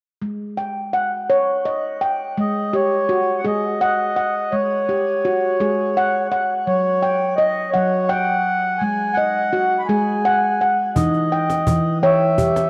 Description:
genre	world meditative, meditative tuned percussion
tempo	56 BPM (dotted quarters)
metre	6/8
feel	straight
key	unclear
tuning	A4 = 440 Hz
part	handpan	arpeggios	0.2-12.7 s	E3 to G5	-21 LUFS	equal	shimmer reverb
part	mellow accordion	melody	2.4-12.7 s	C#5 to B5	-23 LUFS	equal	cassette tape, shimmer reverb, analog delay
part	cajon	percussion	11.0-12.7 s	none	-26 LUFS	equal	none
room	wet spring reverb, RT60 1.7 s, small room ambience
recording	home recording on cassette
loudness	-19 LUFS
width	mono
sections	0.2-2.4 A section; 2.4-11.0 B section; 11.0-12.7 C section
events	none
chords	0.2 G#5; 6.7 F#5; 8.8 G#5; 11.0 Emmaj7

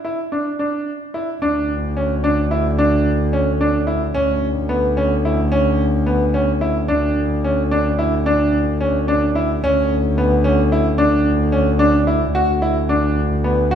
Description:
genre	contemporary instrumental, chamber music in an uneven meter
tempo	220 BPM (eighths)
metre	5/8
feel	straight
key	unclear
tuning	A4 = 440 Hz
part	bright concert grand piano	arpeggios	0.0-13.8 s	B3 to F#4	-18 LUFS	equal	none
part	warm double bass	bass	1.4-13.8 s	D2	-18 LUFS	equal	none
room	wet recital hall reverb, RT60 1.7 s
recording	heard from further back in the room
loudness	-15 LUFS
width	side -8 dB against mid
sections	0.0-1.4 A section; 1.4-12.4 B section; 12.4-13.8 C section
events	none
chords	0.0 Dsus2; 1.4 N.C.; 4.2 Bmadd9/D (rootless); 6.9 N.C.; 9.6 Bmadd9/D (rootless); 11.0 N.C.

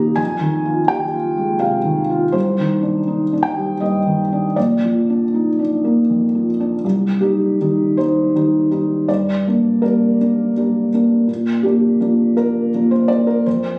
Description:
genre	neoclassical minimalist piano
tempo	82 BPM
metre	3/4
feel	rubato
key	C minor from 6.8 s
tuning	A4 = 440 Hz
part	felt-muted upright piano	solo	0.0-13.8 s	Bb1 to G6	-14 LUFS	equal	none
room	little or no reverb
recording	recorded on a phone in the room, studio reverb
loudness	-14 LUFS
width	side -28 dB against mid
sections	0.0-6.8 A section; 6.8-13.8 B section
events	none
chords	0.2 Fm7; 2.3 Cmadd9; 4.6 Bb; 6.8 Cm; 9.1 Gm; 11.3 Bb6

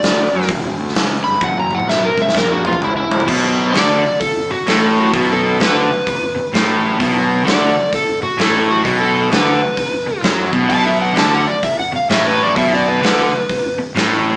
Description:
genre	blues rock power trio and southern rock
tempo	129 BPM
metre	4/4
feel	swing 64% on 8ths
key	B minor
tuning	A4 = 440 Hz
part	overdriven slide guitar	melody	0.0-13.8 s	E4 to B5	-17 LUFS	equal	none
part	fuzz fingered electric bass	bass	0.0-14.4 s	E1 to F#2	-21 LUFS	equal	overdrive
part	huge arena drum kit	drums	0.0-14.1 s	crash cymbal, hi-hat, kick drum, snare drum, toms	-19 LUFS	equal	none
part	overdriven electric guitar	riff	3.3-14.4 s	A2 to F#3	-16 LUFS	equal	none
room	moderate large studio reverb, RT60 1.1 s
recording	band playing live in one room, small speaker sound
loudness	-13 LUFS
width	side -28 dB against mid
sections	0.0-3.3 A section; 3.3-14.4 B section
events	electric slide guitar solo 0.0-3.3; drum fill 1.4-3.3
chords	0.5 Em7; 1.4 F#; 3.3 Bm

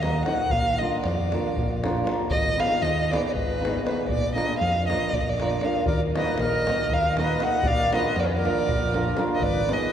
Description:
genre	balkan folk, Balkan wedding band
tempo	236 BPM (eighths)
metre	7/8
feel	straight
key	Bb phrygian dominant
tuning	A4 = 442 Hz
part	dark violin	melody	0.0-9.9 s	Cb5 to Gb5	-26 LUFS	equal	none
part	hammered dulcimer	accompaniment	0.0-9.8 s	Bb3 to Cb5	-28 LUFS	right 2 dB	none
part	fingered electric bass	bass	0.0-9.7 s	Ab1 to F2	-29 LUFS	equal	none
part	davul	percussion	0.0-9.9 s	none	-30 LUFS	left 1 dB	none
part	accordion	second line	5.9-9.9 s	Ab4 to Eb5	-30 LUFS	left 1 dB	none
room	wet cathedral reverb, RT60 6.3 s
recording	recorded in a church or concert hall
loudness	-22 LUFS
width	side -9 dB against mid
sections	0.0-5.9 A section; 5.9-9.9 A section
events	none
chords	0.0 Ebm; 0.5 Bb; 2.3 Abm; 4.1 Bb; 5.9 Ebm; 7.6 Bb; 9.4 Abm

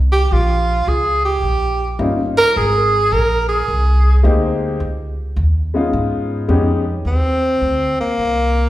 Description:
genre	jazz, small-group swing and bop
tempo	107 BPM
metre	4/4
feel	swing 67% on 8ths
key	Eb major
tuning	A4 = 439 Hz
part	upright bass	bass	0.0-8.7 s	G1 to Ab2	-17 LUFS	equal	none
part	breathy tenor saxophone	second line	0.1-4.2 s	F4 to Bb4	-16 LUFS	right 2 dB	none
part	warm upright piano	accompaniment	2.0-6.8 s	G3 to G4	-19 LUFS	left 3 dB	none
part	growling tenor saxophone	melody	7.1-8.7 s	Bb3 to C4	-16 LUFS	left 1 dB	none
room	wet recital hall reverb, RT60 1.3 s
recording	recorded in a church or concert hall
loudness	-14 LUFS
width	side -15 dB against mid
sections	0.0-7.1 A section; 7.1-8.7 B section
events	tenor saxophone solo 0.0-7.1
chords	0.3 Bbm; 1.4 Eb7; 2.6 Abmaj9; 4.8 Db9; 7.1 Ebmaj7(no3)

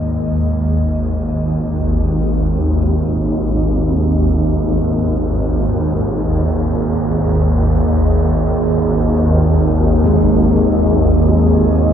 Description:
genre	dark ambient drone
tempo	free time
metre	none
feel	none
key	unclear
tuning	A4 = 441 Hz
part	deep dark ambient pad	sustained chords	0.0-11.9 s	A#3 to D#5	-19 LUFS	equal	chorus, built-in reverb, shimmer reverb
part	swarming drone	drone	0.0-11.9 s	G#1 to D#2	-14 LUFS	equal	built-in reverb
part	impact	percussion	10.0-10.3 s	none	-26 LUFS	equal	none
part	bronze singing bowl	texture	10.1-11.9 s	G#3 to G#4	-22 LUFS	left 2 dB	shimmer reverb
room	wet cathedral reverb, RT60 5.3 s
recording	cassette tape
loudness	-13 LUFS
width	side -9 dB against mid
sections	0.0-11.9 A section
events	none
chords	0.0 G#sus2

